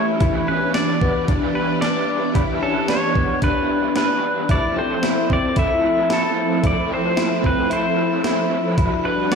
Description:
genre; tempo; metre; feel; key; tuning
dream pop; 112 BPM; 4/4; straight; E minor; A4 = 440 Hz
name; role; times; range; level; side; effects
pedal steel guitar; melody; 0.0-9.3 s; A4 to E5; -23 LUFS; equal; digital delay
raw garage guitar; accompaniment; 0.0-9.3 s; E3 to B4; -27 LUFS; right 3 dB; overdrive, tremolo, ensemble chorus
phased string machine; sustained chords; 0.0-9.3 s; E3 to B4; -23 LUFS; right 1 dB; ensemble chorus, phaser
direct-recorded clean electric guitar; arpeggios; 0.0-9.3 s; B3 to F#4; -23 LUFS; left 4 dB; ensemble chorus, digital delay
gated 80s digital drum machine; drums; 0.2-9.3 s; hi-hat, kick drum, snare drum; -22 LUFS; right 1 dB; gated reverb, gated reverb snare, overdrive
room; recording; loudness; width
moderate plate reverb, RT60 2.1 s; played on a big sound system in a bare room, large studio reverb; -17 LUFS; side -5 dB against mid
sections
0.0-9.3 A section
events
none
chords
0.2 Em7; 4.5 Fmaj7; 8.8 Gmaj7

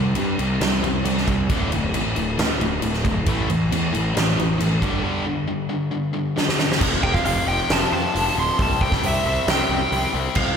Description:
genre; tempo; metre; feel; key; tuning
hard rock; 135 BPM; 4/4; straight; unclear; A4 = 439 Hz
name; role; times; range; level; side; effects
cranked stack guitar; riff; 0.0-6.8 s; D2 to A3; -27 LUFS; right 10 dB; overdrive, slapback echo
tight distorted guitar; riff; 0.0-10.6 s; D2 to C4; -25 LUFS; left 6 dB; distortion, slapback echo
fuzz picked electric bass; bass; 0.0-10.5 s; D1 to G2; -26 LUFS; right 1 dB; overdrive
huge arena drum kit; drums; 0.2-10.5 s; crash cymbal, hi-hat, kick drum, snare drum; -22 LUFS; right 1 dB; none
bluesy overdriven lead guitar; melody; 7.0-10.6 s; E5 to C6; -23 LUFS; right 2 dB; distortion
room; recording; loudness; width
light reverb, small room ambience; none; -19 LUFS; side -7 dB against mid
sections
0.0-6.8 A section; 6.8-10.6 B section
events
break 5.0-6.8; drum fill 6.4-6.8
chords
0.0 C5; 1.5 D5; 3.3 A5; 4.8 G5; 6.8 F; 8.6 C5

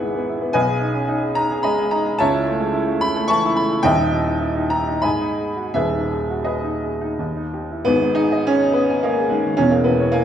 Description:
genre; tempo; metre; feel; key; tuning
classical, romantic character piece for solo piano; 82-112 BPM; 3/4; rubato; G# minor; A4 = 440 Hz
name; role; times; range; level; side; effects
clear upright piano; solo; 0.0-10.2 s; D#1 to D#6; -17 LUFS; equal; none
room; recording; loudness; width
wet recital hall reverb, RT60 1.3 s; recorded in a church or concert hall, faint mains hum; -17 LUFS; side -9 dB against mid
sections
0.0-7.9 A section; 7.9-10.2 B section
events
none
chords
0.0 E/G#; 0.6 G#m/B; 2.2 A/C#; 3.9 D#; 5.0 G#m; 5.7 G#m/D#; 7.2 D#; 7.9 G#5; 9.6 C#m/E

